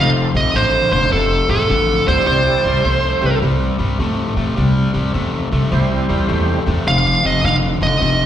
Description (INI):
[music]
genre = electric blues shuffle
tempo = 104 BPM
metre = 4/4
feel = swing 65% on 8ths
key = C major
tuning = A4 = 443 Hz
[part]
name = dark smooth lead guitar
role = melody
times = 0.0-3.4, 6.9-8.3 s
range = A4 to F5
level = -16 LUFS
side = right 1 dB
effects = overdrive, slapback echo
[part]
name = percussive tonewheel organ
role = accompaniment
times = 0.0-6.6 s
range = G3 to D5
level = -24 LUFS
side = right 5 dB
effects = slow rotary speaker, overdrive, chorus vibrato, slapback echo
[part]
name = overdriven semi-hollow guitar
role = riff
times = 0.0-8.3 s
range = F2 to A3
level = -21 LUFS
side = left 3 dB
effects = slapback echo
[part]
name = upright bass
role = bass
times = 0.0-8.3 s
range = F1 to Bb2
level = -18 LUFS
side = equal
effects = none
[sound]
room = digital ambience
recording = live gig heard through the venue's PA, recital hall reverb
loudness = -14 LUFS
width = side -10 dB against mid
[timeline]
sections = 0.0-8.3 A section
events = none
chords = 0.0 F; 2.3 C; 6.9 F5